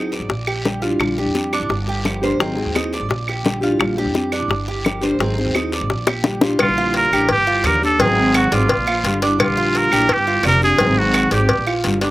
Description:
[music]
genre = latin, Cuban son and guajira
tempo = 171 BPM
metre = 4/4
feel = straight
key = Bb major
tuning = A4 = 440 Hz
[part]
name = nylon-string guitar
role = accompaniment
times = 0.0-12.1 s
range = D3 to Ab4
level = -22 LUFS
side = left 2 dB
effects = slapback echo
[part]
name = Cuban tres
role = arpeggios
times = 0.0-12.1 s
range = C4 to D5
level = -24 LUFS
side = right 3 dB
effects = none
[part]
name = upright bass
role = bass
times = 0.0-12.1 s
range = F1 to F2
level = -23 LUFS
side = right 1 dB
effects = none
[part]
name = bongos and cowbell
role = percussion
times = 0.1-12.1 s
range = none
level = -20 LUFS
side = left 3 dB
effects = none
[part]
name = guiro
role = percussion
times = 0.1-12.1 s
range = none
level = -31 LUFS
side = left 2 dB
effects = none
[part]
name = claves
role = percussion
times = 0.5-11.8 s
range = none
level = -25 LUFS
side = right 4 dB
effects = none
[part]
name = trumpet with straight mute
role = melody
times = 6.6-11.7 s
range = F4 to Bb4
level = -17 LUFS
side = right 1 dB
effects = none
[sound]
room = little or no reverb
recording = recorded outdoors, with no room sound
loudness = -15 LUFS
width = side -17 dB against mid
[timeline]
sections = 0.0-6.6 A section; 6.6-12.1 B section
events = drum fill 6.1-6.6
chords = 0.3 Bb6; 1.7 Gm7; 2.4 Ab7; 3.1 Bb6; 4.5 Gm7; 5.2 Ab7; 5.9 Bb6; 7.3 Gm7; 8.0 Ab7; 8.7 Bb6; 10.1 Gm7; 10.8 Ab7; 11.5 Bb6

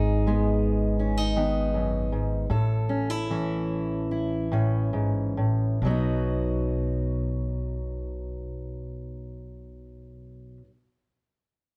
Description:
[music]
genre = folk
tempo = 66-83 BPM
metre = 4/4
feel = straight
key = B major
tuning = A4 = 442 Hz
[part]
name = fingerpicked steel-string acoustic guitar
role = accompaniment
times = 0.0-10.7 s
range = F#2 to A4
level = -29 LUFS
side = equal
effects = none
[part]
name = upright bass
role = bass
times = 0.0-10.6 s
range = G#1 to B1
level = -32 LUFS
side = equal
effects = none
[sound]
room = light reverb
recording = dark, warm production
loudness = -27 LUFS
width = mono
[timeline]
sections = 0.0-5.8 A section; 5.8-9.4 B section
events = slowing down 0.0-5.8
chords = 0.0 G#m; 2.5 A; 5.8 B

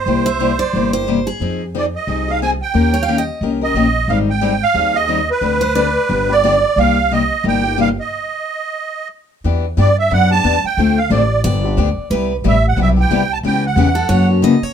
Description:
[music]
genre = acoustic string swing (jazz manouche)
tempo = 179 BPM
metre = 4/4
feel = swing 59% on 8ths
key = C minor, E minor from 9.4 s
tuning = A4 = 440 Hz
[part]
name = musette accordion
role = melody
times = 0.0-14.3 s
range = B4 to A5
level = -17 LUFS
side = right 4 dB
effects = none
[part]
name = picked steel-string acoustic guitar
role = accompaniment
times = 0.1-14.5 s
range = C3 to Bb4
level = -18 LUFS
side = left 6 dB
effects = none
[part]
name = upright bass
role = bass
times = 0.1-14.7 s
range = G1 to C#3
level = -18 LUFS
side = equal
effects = none
[part]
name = picked steel-string acoustic guitar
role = second line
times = 0.3-3.5, 5.6-6.2, 11.4-14.7 s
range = Ab4 to F5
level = -23 LUFS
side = right 3 dB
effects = none
[sound]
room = light reverb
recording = minimal, uncompressed stereo recording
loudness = -13 LUFS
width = side -8 dB against mid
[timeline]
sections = 0.0-9.4 A section; 9.4-14.7 B section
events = stop 8.1-9.4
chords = 0.1 C7; 1.4 Fm7; 2.7 Eb7; 4.1 Abmaj7; 5.4 Dm7; 6.1 G7; 6.8 Cm7; 8.1 N.C.; 9.4 Em9; 10.8 Dm7; 11.4 G7; 12.1 Cmaj7; 13.4 C#m7b5; 14.1 F#7

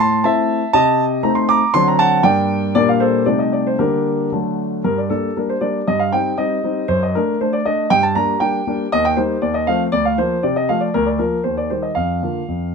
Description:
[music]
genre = classical-period piano sonatina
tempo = 118 BPM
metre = 2/4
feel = straight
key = G minor, Bb major from 8.9 s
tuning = A4 = 441 Hz
[part]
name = warm concert grand piano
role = solo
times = 0.0-12.7 s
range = D2 to D6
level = -15 LUFS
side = equal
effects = none
[sound]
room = light reverb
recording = close, detailed microphones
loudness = -15 LUFS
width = side -5 dB against mid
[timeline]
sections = 0.0-4.9 A section; 4.9-12.7 B section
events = none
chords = 0.0 Am; 0.7 Adim/C; 1.7 D7; 2.2 Gm; 2.7 Gm/Bb; 3.3 Am7b5/C; 3.8 Gm/D; 4.3 D; 4.9 Gm; 5.9 Cm/G; 6.9 D/F#; 7.9 Gm; 8.9 Eb; 9.4 F7/Eb; 9.9 Bb/D; 10.4 F/C; 10.9 Bb/D; 11.4 Eb6; 11.9 Bb/F

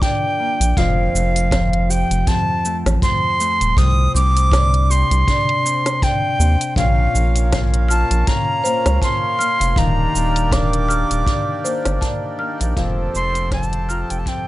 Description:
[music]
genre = folktronica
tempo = 80 BPM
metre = 4/4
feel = swing 56% on 16ths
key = F mixolydian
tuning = A4 = 439 Hz
[part]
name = bright reedy jazz flute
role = melody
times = 0.0-14.5 s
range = F5 to Eb6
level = -20 LUFS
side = equal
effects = tape echo
[part]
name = concert harp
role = arpeggios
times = 0.0-14.5 s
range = F2 to G4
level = -24 LUFS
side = left 1 dB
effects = none
[part]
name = kick drum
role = drums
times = 0.0-14.4 s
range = none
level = -21 LUFS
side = equal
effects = none
[part]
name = organic electronic drum kit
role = drums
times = 0.0-14.4 s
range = cabasa, hi-hat, snare drum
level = -25 LUFS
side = right 1 dB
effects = overdrive
[part]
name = round analog bass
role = bass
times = 0.6-14.2 s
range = Eb1 to Eb2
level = -18 LUFS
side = equal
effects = none
[part]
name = marimba with medium mallets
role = second line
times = 6.8-14.1 s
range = C5 to F6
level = -26 LUFS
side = left 1 dB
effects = digital delay
[part]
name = hand-pumped harmonium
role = sustained chords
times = 6.8-14.5 s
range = Eb3 to A4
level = -28 LUFS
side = right 1 dB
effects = none
[sound]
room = small room ambience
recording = nothing above 11.0 kHz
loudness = -15 LUFS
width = side -16 dB against mid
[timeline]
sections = 0.0-14.5 A section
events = fade-out 10.8-14.5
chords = 0.0 Ebmaj7; 0.8 Fadd9; 3.8 Csus2; 6.8 Bbm; 9.8 Ebmaj7; 12.8 Fadd9

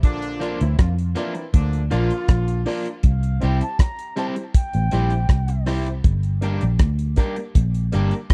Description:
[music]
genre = roots reggae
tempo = 80 BPM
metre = 4/4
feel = straight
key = C mixolydian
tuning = A4 = 440 Hz
[part]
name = mellow horn section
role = second line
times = 0.0-2.6 s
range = Bb2 to F4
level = -32 LUFS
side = equal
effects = tape echo
[part]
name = vintage muted fingered electric bass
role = bass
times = 0.0-8.3 s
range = G1 to F2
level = -23 LUFS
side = equal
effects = none
[part]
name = cloth-damped thuddy drum kit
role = drums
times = 0.0-8.3 s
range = hi-hat, kick drum, rim click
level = -18 LUFS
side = equal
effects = none
[part]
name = electric guitar at the edge of break-up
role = accompaniment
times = 0.4-8.1 s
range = F3 to G4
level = -32 LUFS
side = equal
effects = tape echo
[part]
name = warm upright piano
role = stabs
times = 0.4-8.1 s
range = Bb3 to D5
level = -32 LUFS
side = equal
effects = none
[part]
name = mellow concert flute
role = melody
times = 3.1-5.6 s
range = F5 to Bb5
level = -32 LUFS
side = equal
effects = tape echo
[sound]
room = little or no reverb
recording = dry, close 1970s-style studio recording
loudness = -21 LUFS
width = mono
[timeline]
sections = 0.0-8.3 A section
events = none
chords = 0.0 Bb; 3.0 C; 6.0 Gm

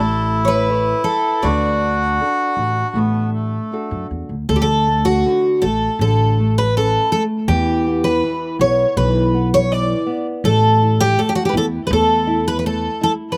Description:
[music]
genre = fado-style ballad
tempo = 81 BPM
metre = 4/4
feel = rubato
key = D major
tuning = A4 = 439 Hz
[part]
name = picked twelve-string acoustic guitar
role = melody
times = 0.0-13.4 s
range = D4 to D5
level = -20 LUFS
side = equal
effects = slapback echo
[part]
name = accordion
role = second line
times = 0.0-4.1 s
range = A3 to F#4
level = -23 LUFS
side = equal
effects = slapback echo
[part]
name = nylon-string guitar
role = accompaniment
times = 0.0-13.4 s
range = D3 to C#5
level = -26 LUFS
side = equal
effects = none
[part]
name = upright bass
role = bass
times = 0.0-12.9 s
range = A1 to F#2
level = -22 LUFS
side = equal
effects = none
[sound]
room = little or no reverb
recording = recorded outdoors, with no room sound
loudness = -17 LUFS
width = mono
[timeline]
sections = 0.0-4.5 A section; 4.5-13.4 A section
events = none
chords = 0.0 A; 1.4 D; 4.5 D5; 7.5 E5; 10.4 A5

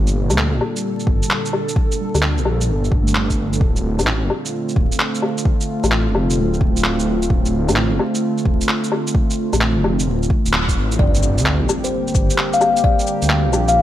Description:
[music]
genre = future garage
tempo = 130 BPM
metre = 4/4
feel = swing 66% on 16ths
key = G minor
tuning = A4 = 439 Hz
[part]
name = muted felt-like synth keys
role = accompaniment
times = 0.0-3.8, 11.1-13.8 s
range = G3 to G4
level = -30 LUFS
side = right 3 dB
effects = none
[part]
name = warbly tape-like pad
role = sustained chords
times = 0.0-13.8 s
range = Bb2 to A4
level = -22 LUFS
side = right 1 dB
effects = chorus, built-in reverb, sidechain pumping
[part]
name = swelling detuned saw bass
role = bass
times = 0.0-13.8 s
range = D1 to D2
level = -19 LUFS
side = equal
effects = sidechain pumping
[part]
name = electronic shaker, woodblock, handclaps and cabasa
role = drums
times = 0.1-13.7 s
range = none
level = -21 LUFS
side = left 1 dB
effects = none
[part]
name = electronic kick drum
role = drums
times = 1.1-13.0 s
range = none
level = -18 LUFS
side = equal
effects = overdrive
[part]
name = kalimba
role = melody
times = 11.0-13.8 s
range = C5 to F5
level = -19 LUFS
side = left 3 dB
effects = ping-pong delay
[part]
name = impact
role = sound effects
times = 11.0-12.8 s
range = none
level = -27 LUFS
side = equal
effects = none
[sound]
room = light reverb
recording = vinyl crackle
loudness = -16 LUFS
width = side -12 dB against mid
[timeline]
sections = 0.0-11.0 A section; 11.0-13.8 B section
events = band accent 10.5; impact 11.0-12.8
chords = 0.0 Gm; 3.6 Dm7; 11.0 Gm

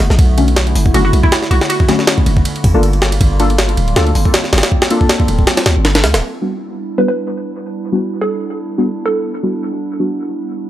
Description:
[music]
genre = drum and bass, jungle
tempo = 159 BPM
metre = 4/4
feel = swing 55% on 16ths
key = E minor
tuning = A4 = 440 Hz
[part]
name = warbly tape-like pad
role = sustained chords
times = 0.0-10.7 s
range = D3 to F#4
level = -22 LUFS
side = right 2 dB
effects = chorus, built-in reverb
[part]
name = long sustained 808-style bass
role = bass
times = 0.0-6.2 s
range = D1 to D2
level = -13 LUFS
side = equal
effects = none
[part]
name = jungle sampler-style drum kit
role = drums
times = 0.0-6.2 s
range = hi-hat, kick drum, ride cymbal, snare drum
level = -14 LUFS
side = equal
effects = studio reverb
[part]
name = deep mellow chord stab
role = stabs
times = 0.4-10.1 s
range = D3 to A4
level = -19 LUFS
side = left 2 dB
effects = chorus, dub echo
[part]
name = hollow square pluck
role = melody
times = 0.9-2.2, 7.0-9.4 s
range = E4 to B4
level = -20 LUFS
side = right 2 dB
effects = lush chorus, dub echo
[sound]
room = digital ambience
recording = none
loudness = -12 LUFS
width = side -13 dB against mid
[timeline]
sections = 0.0-6.2 A section; 6.2-10.7 B section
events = drop 0.0-6.2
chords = 0.0 Bm7; 2.5 Gm7; 6.2 Em7

